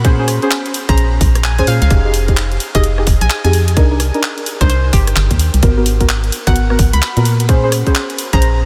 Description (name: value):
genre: UK garage, two-step garage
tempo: 129 BPM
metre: 4/4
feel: swing 62% on 16ths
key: unclear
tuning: A4 = 440 Hz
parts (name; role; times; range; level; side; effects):
- deep mellow chord stab; stabs; 0.0-8.4 s; Cb4 to C5; -22 LUFS; equal; chorus, vintage 12-bit sampler grit, diffuse ambient delay
- organ-like FM bass; bass; 0.0-8.6 s; F1 to Bb2; -16 LUFS; equal; none
- electronic kick drum; drums; 0.0-8.4 s; none; -16 LUFS; equal; none
- garage drum kit; drums; 0.0-8.5 s; handclaps, hi-hat, rim click; -23 LUFS; equal; none
- hollow square pluck; melody; 0.9-8.7 s; G4 to Cb6; -26 LUFS; equal; chorus, diffuse ambient delay
room: light reverb, digital ambience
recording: none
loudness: -14 LUFS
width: mono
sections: 0.0-8.7 A section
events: none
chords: 0.0 Bbm9; 1.9 Fm9; 3.8 Cm9; 5.6 Abm9; 7.3 Bbm9